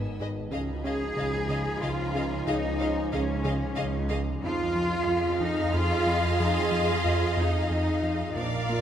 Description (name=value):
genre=cinematic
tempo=92 BPM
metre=3/4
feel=straight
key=unclear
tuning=A4 = 438 Hz
part: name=dark French horn section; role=sustained chords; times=0.0-8.8 s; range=B3 to G#4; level=-34 LUFS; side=left 1 dB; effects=none
part: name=warm trombone section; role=sustained chords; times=0.0-8.6 s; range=D#3 to D#4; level=-39 LUFS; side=right 2 dB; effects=none
part: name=fat analog bass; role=riff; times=0.0-8.8 s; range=F2 to C#4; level=-33 LUFS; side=equal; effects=none
part: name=rich studio cello section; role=bass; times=0.0-8.8 s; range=B3 to G#4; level=-31 LUFS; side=right 1 dB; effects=none
part: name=rich studio double bass section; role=bass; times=0.0-8.8 s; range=G#1 to F2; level=-31 LUFS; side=right 1 dB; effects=none
part: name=swarming drone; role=drone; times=0.0-8.8 s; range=G#1 to F2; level=-39 LUFS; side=left 1 dB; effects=none
part: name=rich symphonic violin section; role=texture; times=0.0-8.8 s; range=G#5 to B6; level=-42 LUFS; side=left 2 dB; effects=none
part: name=warm symphonic violin section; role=melody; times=0.2-8.8 s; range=D#5 to E#5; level=-35 LUFS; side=left 4 dB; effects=none
part: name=rich symphonic violin section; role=second line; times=0.2-8.8 s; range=B4 to D#5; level=-38 LUFS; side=equal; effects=none
part: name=clear symphonic viola section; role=accompaniment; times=0.2-8.8 s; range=G#4 to A#4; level=-36 LUFS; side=right 4 dB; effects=none
room=wet scoring stage reverb, RT60 1.9 s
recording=none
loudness=-25 LUFS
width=side -9 dB against mid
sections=0.0-8.8 A section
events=none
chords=0.0 G#m; 0.5 C#add9; 4.4 Fm7